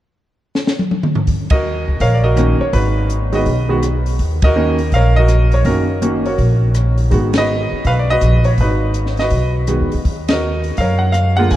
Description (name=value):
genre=jazz piano trio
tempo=164 BPM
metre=4/4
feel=swing 64% on 8ths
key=Eb minor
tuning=A4 = 440 Hz
part: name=compact cocktail drum kit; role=drums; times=0.6-11.6 s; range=hi-hat, kick drum, ride cymbal, rim click, snare drum, toms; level=-20 LUFS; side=equal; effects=none
part: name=upright bass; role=bass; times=1.3-11.6 s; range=Gb1 to Gb2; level=-15 LUFS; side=equal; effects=none
part: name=clear concert grand piano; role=melody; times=1.5-11.6 s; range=D3 to Ab5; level=-17 LUFS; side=right 1 dB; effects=none
room=moderate cathedral reverb, RT60 6.5 s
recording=in a vast, echoing space, lossy compression artefacts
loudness=-13 LUFS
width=side -14 dB against mid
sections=0.0-1.3 A section; 1.3-11.6 B section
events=drum fill 0.6-1.3; band accent 1.5, 4.4, 7.3, 10.2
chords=0.0 N.C.; 1.3 Ebm7; 2.7 Abm7; 4.2 Ebm7; 7.1 Abm7; 10.0 Ebm7